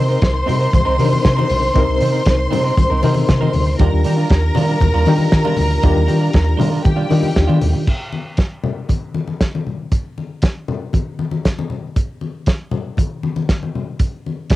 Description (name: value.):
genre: disco.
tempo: 118 BPM.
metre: 4/4.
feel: straight.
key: unclear.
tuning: A4 = 440 Hz.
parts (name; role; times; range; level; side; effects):
warm studio string section; second line; 0.0-7.9 s; G4 to C6; -21 LUFS; equal; none.
electric guitar at the edge of break-up; accompaniment; 0.0-7.8 s; G3 to C5; -24 LUFS; right 6 dB; none.
reed electric piano; accompaniment; 0.0-7.9 s; C3 to Bb4; -22 LUFS; left 5 dB; overdrive, fast tremolo.
hollow-body short-scale fingered electric bass; bass; 0.0-7.8 s; B1 to Eb3; -17 LUFS; right 1 dB; none.
warm soul drum kit; drums; 0.2-14.6 s; crash cymbal, hi-hat, kick drum, snare drum; -17 LUFS; right 1 dB; none.
congas; percussion; 0.2-14.6 s; none; -23 LUFS; left 4 dB; none.
room: light reverb.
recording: home recording on cassette.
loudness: -15 LUFS.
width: side -16 dB against mid.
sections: 0.0-7.9 A section; 7.9-14.6 B section.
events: none.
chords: 0.0 Cm7; 3.8 Ebmaj9; 7.9 N.C..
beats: 0.23 0.73 1.25 | 1.76 2.27 2.78 3.29 | 3.80 4.31 4.82 5.33 | 5.83 6.34 6.86 7.37 | 7.88 8.39 8.90 9.41 | 9.92 10.43 10.94 11.45 | 11.96 12.47 12.98 13.49 | 14.00 14.51.